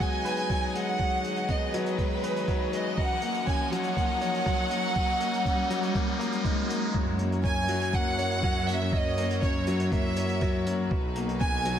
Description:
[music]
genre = piano and strings electronica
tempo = 121 BPM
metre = 4/4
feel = straight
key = unclear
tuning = A4 = 441 Hz
[part]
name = warm chamber violin section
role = melody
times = 0.0-11.8 s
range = B4 to G#5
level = -30 LUFS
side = right 2 dB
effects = none
[part]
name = bright chamber string section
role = sustained chords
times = 0.0-11.8 s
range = C#4 to D#5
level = -38 LUFS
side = left 1 dB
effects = none
[part]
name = clear concert grand piano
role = riff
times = 0.0-11.8 s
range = F#3 to C#5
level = -31 LUFS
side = left 3 dB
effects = tape echo
[part]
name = electronic kick drum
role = drums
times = 0.0-11.5 s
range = none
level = -29 LUFS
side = right 1 dB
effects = none
[part]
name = hi-hat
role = drums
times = 0.0-11.8 s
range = none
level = -45 LUFS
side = right 1 dB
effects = high-pass filter on hats, high-pass filter on room
[part]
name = riser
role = sound effects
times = 0.3-6.9 s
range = none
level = -35 LUFS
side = equal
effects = none
[part]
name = clear studio double bass section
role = bass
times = 6.9-11.8 s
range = B1 to F#2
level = -31 LUFS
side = right 1 dB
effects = sidechain pumping
[sound]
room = moderate lush hall reverb, RT60 1.9 s, studio ambience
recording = none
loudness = -25 LUFS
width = side -9 dB against mid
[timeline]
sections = 0.0-6.9 A section; 6.9-11.8 B section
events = build-up 0.0-6.9; riser 0.3-6.9; drop 6.9-11.8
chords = 0.0 G#m7; 3.0 D#m7; 6.9 F#7; 10.9 Bmaj7

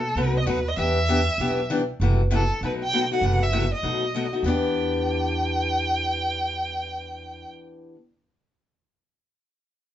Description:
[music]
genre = acoustic string swing (jazz manouche)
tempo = 196 BPM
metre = 4/4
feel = swing 60% on 8ths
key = E minor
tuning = A4 = 442 Hz
[part]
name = warm violin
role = melody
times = 0.0-7.5 s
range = A4 to G5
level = -26 LUFS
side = right 1 dB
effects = none
[part]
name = upright bass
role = bass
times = 0.0-7.4 s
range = F#1 to E2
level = -27 LUFS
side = right 1 dB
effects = none
[part]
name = picked steel-string acoustic guitar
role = accompaniment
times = 0.2-8.0 s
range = B2 to G4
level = -26 LUFS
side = left 3 dB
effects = none
[sound]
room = wet studio reverb, RT60 0.6 s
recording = band playing live in one room, nothing above 7.7 kHz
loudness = -21 LUFS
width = side -11 dB against mid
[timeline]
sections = 0.0-2.0 A section; 2.0-4.4 B section; 4.4-6.9 C section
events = none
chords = 0.0 B7; 0.8 Em7; 2.0 F#m7b5; 2.6 B7b13; 3.2 F#m7b5; 3.8 B7; 4.4 Em7

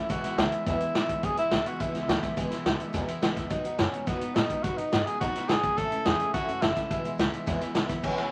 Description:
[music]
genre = rockabilly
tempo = 212 BPM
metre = 4/4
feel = straight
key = E major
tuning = A4 = 440 Hz
[part]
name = breathy tenor saxophone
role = melody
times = 0.0-8.3 s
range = B3 to A4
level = -32 LUFS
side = equal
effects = none
[part]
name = picked steel-string acoustic guitar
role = accompaniment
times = 0.0-8.3 s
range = E2 to F#4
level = -37 LUFS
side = equal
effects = none
[part]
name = upright bass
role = bass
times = 0.1-8.3 s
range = E1 to B2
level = -40 LUFS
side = equal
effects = none
[part]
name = vintage drum kit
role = drums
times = 0.1-8.2 s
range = crash cymbal, hi-hat, kick drum, ride cymbal, snare drum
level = -31 LUFS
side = equal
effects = none
[sound]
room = light reverb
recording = vinyl crackle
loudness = -28 LUFS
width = mono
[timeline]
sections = 0.0-8.0 A section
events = none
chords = 0.1 E; 3.5 B; 5.8 A; 6.9 E

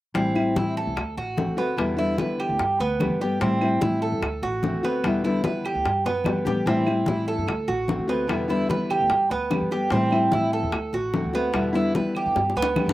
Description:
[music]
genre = latin, Cuban son and guajira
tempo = 148 BPM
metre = 4/4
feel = straight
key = G major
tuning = A4 = 440 Hz
[part]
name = nylon-string guitar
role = accompaniment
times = 0.1-12.9 s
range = B2 to G4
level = -25 LUFS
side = left 2 dB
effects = none
[part]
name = upright bass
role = bass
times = 0.1-12.9 s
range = A1 to E3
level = -30 LUFS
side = equal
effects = none
[part]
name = bongos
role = percussion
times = 0.1-12.9 s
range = none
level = -31 LUFS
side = left 5 dB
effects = none
[part]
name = Cuban tres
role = arpeggios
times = 0.2-12.9 s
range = B3 to B4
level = -25 LUFS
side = right 3 dB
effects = none
[part]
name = congas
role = percussion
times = 0.2-12.9 s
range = none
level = -31 LUFS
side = left 1 dB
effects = none
[part]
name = claves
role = percussion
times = 0.4-12.9 s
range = none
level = -37 LUFS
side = right 6 dB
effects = none
[sound]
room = light reverb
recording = recorded outdoors, with no room sound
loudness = -21 LUFS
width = side -16 dB against mid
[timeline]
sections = 0.2-12.9 A section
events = drum fill 6.1-6.7, 12.4-12.9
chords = 0.2 Am7; 1.0 D7; 1.8 Em7; 2.6 G; 3.4 Am7; 4.2 D7; 5.0 Em7; 5.9 Gadd9; 6.7 Am7; 7.5 D7; 8.3 Em7; 9.1 G; 9.9 Am7; 10.7 D7; 11.5 Em7; 12.4 G

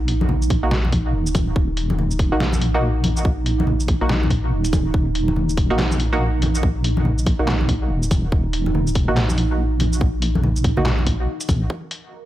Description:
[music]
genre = deep dubstep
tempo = 142 BPM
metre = 4/4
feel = swing 61% on 16ths, half-time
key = Eb minor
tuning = A4 = 440 Hz
[part]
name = dark analog pad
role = sustained chords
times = 0.0-12.3 s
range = Eb4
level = -27 LUFS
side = right 4 dB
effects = chorus, phaser
[part]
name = deep soft wobble bass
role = bass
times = 0.0-11.7 s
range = Eb1 to Bb1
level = -20 LUFS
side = equal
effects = chorus
[part]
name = trip hop sampler-style drum kit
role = drums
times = 0.1-12.0 s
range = handclaps, hi-hat, shaker, snare drum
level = -26 LUFS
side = equal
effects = small room ambience
[part]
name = congas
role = percussion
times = 0.2-11.6 s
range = none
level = -26 LUFS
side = left 2 dB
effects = dub echo
[part]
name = electronic kick drum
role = drums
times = 0.5-11.8 s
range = none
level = -20 LUFS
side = equal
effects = high-pass filter on kick, small room ambience
[part]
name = filtered dub chord stab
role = stabs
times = 0.6-10.9 s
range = Bb3 to Gb4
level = -26 LUFS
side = right 1 dB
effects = chorus, dub echo
[part]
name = backwards swelling texture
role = texture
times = 11.7-12.3 s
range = Bb4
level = -45 LUFS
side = right 9 dB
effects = built-in reverb
[sound]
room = light reverb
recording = none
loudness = -17 LUFS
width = side -14 dB against mid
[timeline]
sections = 0.0-11.7 A section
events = none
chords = 0.0 Ebm; 11.7 Eb5

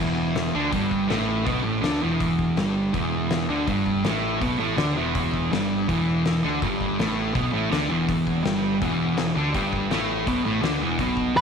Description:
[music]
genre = garage rock duo or trio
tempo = 163 BPM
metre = 4/4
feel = straight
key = unclear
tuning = A4 = 439 Hz
[part]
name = fuzz guitar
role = riff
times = 0.0-11.4 s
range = E2 to D4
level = -22 LUFS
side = right 1 dB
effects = distortion
[part]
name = fuzz picked electric bass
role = bass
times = 0.0-11.4 s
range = E1 to D2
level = -31 LUFS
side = right 1 dB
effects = overdrive
[part]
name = oversized low-tuned drum kit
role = drums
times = 0.4-11.4 s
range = hi-hat, kick drum, snare drum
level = -29 LUFS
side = left 3 dB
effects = none
[part]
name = octave-fuzz lead guitar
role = melody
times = 11.4 s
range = B4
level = -17 LUFS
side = right 1 dB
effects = distortion
[sound]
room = moderate echo chamber reverb, RT60 1.7 s, small room ambience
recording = 1960s-style stereo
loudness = -21 LUFS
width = side -6 dB against mid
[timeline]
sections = 0.0-11.4 A section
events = none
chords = 0.0 E5

